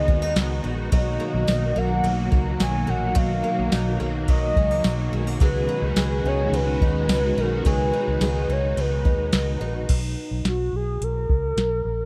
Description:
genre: dream pop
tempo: 107 BPM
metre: 4/4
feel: straight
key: unclear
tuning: A4 = 435 Hz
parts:
  - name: warbly nostalgic lead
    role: melody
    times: 0.0-12.1 s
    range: F#4 to G#5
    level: -29 LUFS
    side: equal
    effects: chorus
  - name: string machine, violas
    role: sustained chords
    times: 0.0-9.9 s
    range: B2 to F#4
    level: -30 LUFS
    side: equal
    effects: ensemble chorus
  - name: picked twelve-string acoustic guitar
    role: arpeggios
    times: 0.0-10.5 s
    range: F#3 to G#4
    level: -33 LUFS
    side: equal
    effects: subtle chorus, digital delay
  - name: vintage muted fingered electric bass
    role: bass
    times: 0.0-12.1 s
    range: A#1 to D#2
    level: -28 LUFS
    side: equal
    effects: none
  - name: soft vintage rhythm box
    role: drums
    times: 0.1-11.7 s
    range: crash cymbal, hi-hat, kick drum, ride cymbal, snare drum, tambourine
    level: -24 LUFS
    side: equal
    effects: overdrive
room: light reverb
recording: dark, warm production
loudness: -23 LUFS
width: mono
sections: 0.0-9.9 A section; 9.9-12.1 B section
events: none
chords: 0.0 C#9sus4; 9.9 B5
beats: 0.36 | 0.92 1.48 2.04 2.60 | 3.17 3.73 4.29 4.85 | 5.41 5.97 6.53 7.09 | 7.65 8.21 8.77 9.33 | 9.89 10.46 11.02 11.58

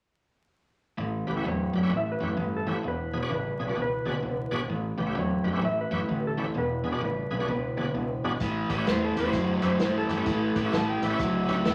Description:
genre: electric blues shuffle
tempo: 129 BPM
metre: 4/4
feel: swing 64% on 8ths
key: A mixolydian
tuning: A4 = 436 Hz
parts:
  - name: raw garage guitar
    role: riff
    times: 1.0-11.7 s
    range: E2 to F#3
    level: -30 LUFS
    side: equal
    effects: overdrive
  - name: vintage muted fingered electric bass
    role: bass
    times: 1.0-11.7 s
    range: E1 to A2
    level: -38 LUFS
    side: equal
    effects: none
  - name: bright tonewheel organ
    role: accompaniment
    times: 1.3-11.6 s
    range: C#4 to B4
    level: -38 LUFS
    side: equal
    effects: slow rotary speaker, overdrive, chorus vibrato
  - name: clean lap steel guitar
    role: melody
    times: 1.5-11.3 s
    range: A4 to E5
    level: -35 LUFS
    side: equal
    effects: none
  - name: vintage drum kit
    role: drums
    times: 8.4-11.7 s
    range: hi-hat, kick drum, snare drum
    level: -34 LUFS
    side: equal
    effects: none
  - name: mellow harmonica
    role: second line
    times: 10.7-11.7 s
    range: E5 to A5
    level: -34 LUFS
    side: equal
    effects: overdrive
room: moderate large studio reverb, RT60 1.2 s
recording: vinyl crackle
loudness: -28 LUFS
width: mono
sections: 1.0-8.4 A section; 8.4-11.7 B section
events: none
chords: 1.0 A7; 2.8 E7; 4.7 A7; 6.6 E7; 8.4 A7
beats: | 0.99 1.45 1.92 2.38 | 2.84 3.31 3.77 4.24 | 4.70 5.16 5.63 6.09 | 6.55 7.02 7.48 7.95 | 8.41 8.87 9.34 9.80 | 10.26 10.72 11.19 11.65

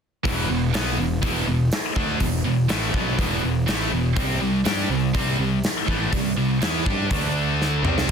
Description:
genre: hard rock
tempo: 122 BPM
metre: 4/4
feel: straight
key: E minor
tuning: A4 = 440 Hz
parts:
  - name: scooped high-gain guitar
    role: riff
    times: 0.2-8.1 s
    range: E2 to G4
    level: -26 LUFS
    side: left 11 dB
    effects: distortion
  - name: scooped high-gain guitar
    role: riff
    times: 0.2-8.1 s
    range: E2 to G4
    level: -25 LUFS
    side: right 10 dB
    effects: distortion
  - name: fuzz picked electric bass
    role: bass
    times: 0.2-8.1 s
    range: E1 to G2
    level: -26 LUFS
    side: equal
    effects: overdrive
  - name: gated 80s drum kit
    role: drums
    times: 0.3-8.1 s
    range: crash cymbal, hi-hat, kick drum, snare drum, toms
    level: -26 LUFS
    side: equal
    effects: none
room: small room ambience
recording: dense, heavily limited modern master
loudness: -20 LUFS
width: side -7 dB against mid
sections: 0.2-8.1 A section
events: drum fill 7.6-8.1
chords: 0.2 E5; 4.2 C5; 7.1 D5; 7.8 C5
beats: | 0.25 0.73 1.22 1.71 | 2.20 2.69 3.18 3.67 | 4.16 4.65 5.14 5.63 | 6.12 6.61 7.10 7.59 | 8.09

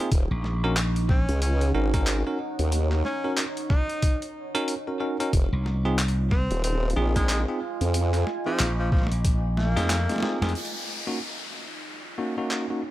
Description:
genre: glitch hop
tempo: 92 BPM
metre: 4/4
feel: swing 60% on 16ths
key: Eb dorian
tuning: A4 = 436 Hz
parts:
  - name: bright tenor saxophone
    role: melody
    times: 0.0-10.5 s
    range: F3 to Eb4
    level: -33 LUFS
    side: equal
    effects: vintage 12-bit sampler grit, digital delay
  - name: bell-like tine electric piano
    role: stabs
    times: 0.0-12.8 s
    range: Bb3 to Bb4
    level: -29 LUFS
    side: equal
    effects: fast stereo tremolo, sidechain pumping, low-pass filter, digital delay
  - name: deep dark ambient pad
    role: texture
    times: 0.0-12.9 s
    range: Eb4 to Ab5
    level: -35 LUFS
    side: right 2 dB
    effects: chorus, built-in reverb, sidechain pumping
  - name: formant-sweep wobble bass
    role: bass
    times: 0.1-8.2 s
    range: Eb1 to F2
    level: -24 LUFS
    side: equal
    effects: chorus
  - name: boom bap sampler-style drum kit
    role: drums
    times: 0.1-12.7 s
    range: handclaps, hi-hat, snare drum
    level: -31 LUFS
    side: equal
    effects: overdrive, small room reverb
  - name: electronic kick drum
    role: drums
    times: 0.1-9.4 s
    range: none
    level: -22 LUFS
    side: equal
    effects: overdrive, small room reverb
  - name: slap bass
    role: bass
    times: 0.3-1.3, 5.5-10.5 s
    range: Bb1 to F2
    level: -24 LUFS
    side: equal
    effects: none
  - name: downlifter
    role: sound effects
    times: 10.6-12.9 s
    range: none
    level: -34 LUFS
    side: left 2 dB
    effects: none
room: little or no reverb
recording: none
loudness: -23 LUFS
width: side -15 dB against mid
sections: 0.0-10.6 A section; 10.6-12.9 B section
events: drop 0.0-10.6; drum fill 9.6-10.6; band accent 10.4-10.7; filter sweep on tine electric piano 10.6-12.9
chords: 0.1 Ebm7; 5.3 Fm7; 10.6 Ebm7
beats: | 0.12 0.77 1.42 2.07 | 2.72 3.38 4.03 4.68 | 5.33 5.99 6.64 7.29 | 7.94 8.59 9.25 9.90 | 10.55 11.20 11.85 12.51

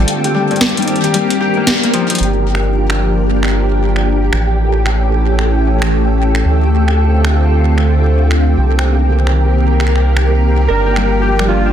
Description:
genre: IDM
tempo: 113 BPM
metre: 4/4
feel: swing 62% on 16ths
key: G minor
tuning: A4 = 440 Hz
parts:
  - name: soft string machine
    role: sustained chords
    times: 0.0-11.7 s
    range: D3 to Bb4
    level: -17 LUFS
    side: equal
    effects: phaser, ensemble chorus
  - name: Celtic harp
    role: arpeggios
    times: 0.0-5.1, 10.7-11.7 s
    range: G2 to G4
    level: -18 LUFS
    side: left 6 dB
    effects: tape echo
  - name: round analog bass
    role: bass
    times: 0.0-11.7 s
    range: G1 to D2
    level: -13 LUFS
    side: equal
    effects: none
  - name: flickering grainy texture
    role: texture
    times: 0.0-11.7 s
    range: G4 to G5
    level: -23 LUFS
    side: equal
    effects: built-in reverb
  - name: electro analog drum machine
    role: drums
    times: 0.1-11.5 s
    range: finger snaps, hi-hat, snare drum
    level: -19 LUFS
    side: right 1 dB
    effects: soft clipping on snare, digital delay
  - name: warbly lo-fi synth keys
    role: melody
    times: 10.7-11.7 s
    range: F4 to Bb4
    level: -17 LUFS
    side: right 4 dB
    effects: chorus, digital delay
room: light reverb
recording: dense, heavily limited modern master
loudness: -11 LUFS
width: side -9 dB against mid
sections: 0.0-2.2 A section; 2.2-11.7 B section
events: break 0.1-2.2; band accent 1.7; drum fill 1.9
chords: 0.1 Cm7; 2.2 Gm7; 4.3 A7; 6.5 Dm7; 8.6 Cm7; 10.7 Gm7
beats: | 0.08 0.61 1.14 1.67 | 2.20 2.73 3.26 3.79 | 4.33 4.86 5.39 5.92 | 6.45 6.98 7.51 8.04 | 8.57 9.11 9.64 10.17 | 10.70 11.23

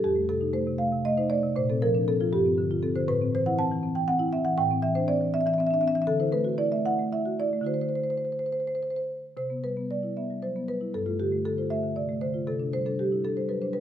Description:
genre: classical, contemporary piece for solo marimba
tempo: 78 BPM (dotted quarters)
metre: 6/8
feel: rubato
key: C lydian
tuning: A4 = 437 Hz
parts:
  - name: marimba with soft mallets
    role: solo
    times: 0.0-13.8 s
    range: F2 to A5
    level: -24 LUFS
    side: equal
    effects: none
room: moderate recital hall reverb, RT60 1.5 s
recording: minimal, uncompressed stereo recording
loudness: -24 LUFS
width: side -10 dB against mid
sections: 0.0-9.4 A section; 9.4-13.8 B section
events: none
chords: 0.0 F7; 1.6 Bbadd9; 2.3 G7sus4; 3.1 Am; 4.6 Cadd9/A; 6.1 Dadd9; 7.7 D9; 9.4 Cmaj7; 10.9 G9sus4; 12.5 Cadd9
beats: | 0.02 0.79 | 1.55 2.32 | 3.08 3.83 | 4.59 5.34 | 6.09 6.86 | 7.67 8.52 | 9.37 10.16 | 10.94 11.71 | 12.46 13.23

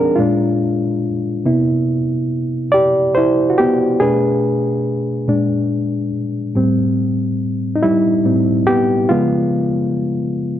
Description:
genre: R&B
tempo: 47 BPM (dotted quarters)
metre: 6/8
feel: straight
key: C major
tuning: A4 = 435 Hz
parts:
  - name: overdriven reed electric piano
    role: solo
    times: 0.0-10.6 s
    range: A2 to D5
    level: -14 LUFS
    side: equal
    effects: none
room: light reverb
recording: none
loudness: -14 LUFS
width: side -11 dB against mid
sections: 0.0-10.6 A section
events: reed electric piano solo 0.0-10.6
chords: 0.2 Bb7; 1.4 Cmaj7; 4.0 Bm7; 5.3 Bb7; 6.5 Am9; 9.1 Db7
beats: 0.17 | 1.44 2.72 | 4.00 5.27 | 6.55 7.83 | 9.10 10.38

